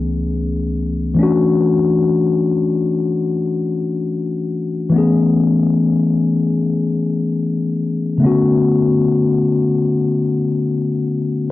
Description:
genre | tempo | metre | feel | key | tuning
R&B | free time | none | none | A major | A4 = 440 Hz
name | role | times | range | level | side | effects
mellow tine electric piano | solo | 0.0-11.5 s | C#2 to G#4 | -14 LUFS | left 2 dB | medium stereo tremolo, cassette tape
room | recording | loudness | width
moderate spring reverb, RT60 1.5 s | home recording on cassette | -15 LUFS | side -15 dB against mid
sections
0.0-11.5 A section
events
none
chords
0.0 Amaj7/C#; 1.2 Dmaj9; 4.9 Amaj7; 8.2 Bm9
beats
free time

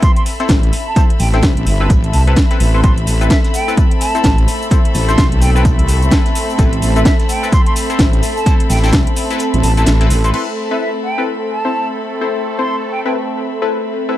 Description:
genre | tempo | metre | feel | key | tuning
bass house | 128 BPM | 4/4 | swing 59% on 16ths | A minor | A4 = 440 Hz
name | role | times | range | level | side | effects
silver concert flute | melody | 0.0-13.1 s | E5 to C6 | -22 LUFS | right 2 dB | ping-pong delay
band-passed chord stab | stabs | 0.0-14.2 s | C4 to C5 | -22 LUFS | left 4 dB | chorus, sidechain pumping, ping-pong delay
electronic kick drum | drums | 0.0-9.0 s | none | -13 LUFS | equal | overdrive
house drum kit | drums | 0.0-10.4 s | crash cymbal, hi-hat, shaker, snare drum | -20 LUFS | equal | overdrive
shaker and snare drum | drums | 0.0-10.2 s | none | -34 LUFS | equal | none
warm studio string section | texture | 0.0-14.2 s | C4 to B5 | -23 LUFS | left 1 dB | sidechain pumping
wobble bass | bass | 0.5-10.3 s | G1 to C2 | -14 LUFS | equal | chorus, tube saturation, sidechain pumping
sweeping resonant pad | sustained chords | 2.8-14.2 s | A3 to A4 | -23 LUFS | equal | chorus, sidechain pumping
riser | sound effects | 14.1-14.2 s | none | barely audible | none | none
room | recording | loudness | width
studio reverb | dark, warm production | -12 LUFS | side -14 dB against mid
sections
0.0-10.3 A section; 10.3-14.2 B section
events
kick drops out 9.4-10.3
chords
0.0 Amadd9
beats
0.03 0.49 | 0.96 1.43 1.90 2.37 | 2.84 3.31 3.77 4.24 | 4.71 5.18 5.65 6.12 | 6.59 7.06 7.53 7.99 | 8.46 8.93 9.40 9.87 | 10.34 10.81 11.28 11.74 | 12.21 12.68 13.15 13.62 | 14.09

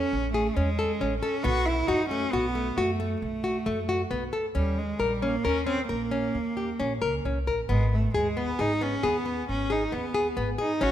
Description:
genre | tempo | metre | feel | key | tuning
contemporary instrumental, chamber music in an uneven meter | 135 BPM | 7/4 | straight | unclear | A4 = 440 Hz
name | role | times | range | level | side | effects
rich cello | melody | 0.0-10.9 s | G3 to F#4 | -30 LUFS | right 1 dB | none
nylon-string guitar | arpeggios | 0.0-10.9 s | A3 to A#4 | -28 LUFS | left 2 dB | none
upright bass | bass | 0.0-10.9 s | G#1 to F#2 | -30 LUFS | equal | none
room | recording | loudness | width
moderate recital hall reverb, RT60 1.7 s | none | -25 LUFS | side -11 dB against mid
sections
0.0-10.9 A section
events
none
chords
0.0 Amaj7; 1.4 B5; 4.6 D#7(no3); 7.7 G#m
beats
0.12 0.56 1.00 | 1.45 1.89 2.33 2.78 3.22 3.66 4.11 | 4.55 5.00 5.44 5.89 6.34 6.79 7.25 | 7.70 8.15 8.60 9.04 9.48 9.93 10.37 | 10.81

